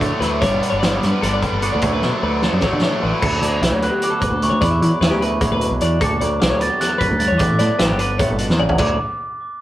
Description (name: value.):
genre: math rock and midwest emo.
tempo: 301 BPM (eighths).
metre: 7/8.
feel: straight.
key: unclear.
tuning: A4 = 440 Hz.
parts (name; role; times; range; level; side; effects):
twangy electric guitar; accompaniment; 0.0-9.0 s; D2 to G4; -25 LUFS; right 3 dB; none.
twelve-string electric guitar; arpeggios; 0.0-9.0 s; G4 to E5; -23 LUFS; left 2 dB; none.
biting overdriven guitar; riff; 0.0-3.2 s; G2 to D4; -23 LUFS; left 1 dB; none.
picked electric bass; bass; 0.0-9.0 s; G1 to E3; -21 LUFS; equal; none.
loose indie drum kit; drums; 0.0-8.9 s; crash cymbal, hi-hat, kick drum, snare drum, toms; -21 LUFS; equal; none.
glockenspiel with rubber mallets; melody; 3.2-9.0 s; B5 to B6; -23 LUFS; right 1 dB; digital delay.
room: moderate small room reverb, RT60 0.5 s.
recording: rough rehearsal-room recording.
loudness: -15 LUFS.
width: side -14 dB against mid.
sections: 0.0-3.2 A section; 3.2-8.8 B section.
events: drum fill 2.0-3.2, 8.5.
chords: 0.4 Gadd9; 1.8 Dmaj9; 3.2 Em11; 7.4 A9sus4; 8.8 D69.